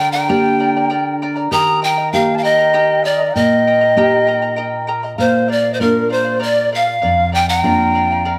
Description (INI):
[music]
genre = andean folk, Andean ensemble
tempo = 98 BPM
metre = 3/4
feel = straight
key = unclear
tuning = A4 = 438 Hz
[part]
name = bright polished pan flute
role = melody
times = 0.0-8.4 s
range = Bb4 to Bb5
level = -17 LUFS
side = equal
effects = none
[part]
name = reedy large quena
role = second line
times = 0.0-8.4 s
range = Bb4 to Eb6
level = -24 LUFS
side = equal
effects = none
[part]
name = charango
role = accompaniment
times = 0.0-8.4 s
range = G4 to Bb5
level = -27 LUFS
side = equal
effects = none
[part]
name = nylon-string guitar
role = accompaniment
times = 0.0-8.4 s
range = F2 to G4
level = -22 LUFS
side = equal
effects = none
[sound]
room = light reverb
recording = close, detailed microphones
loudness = -15 LUFS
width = mono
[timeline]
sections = 0.0-8.4 A section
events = none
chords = 0.0 Gm; 1.5 Eb; 5.2 Bb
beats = 0.28 0.89 | 1.50 2.12 2.73 | 3.34 3.95 4.57 | 5.18 5.79 6.41 | 7.02 7.63 8.25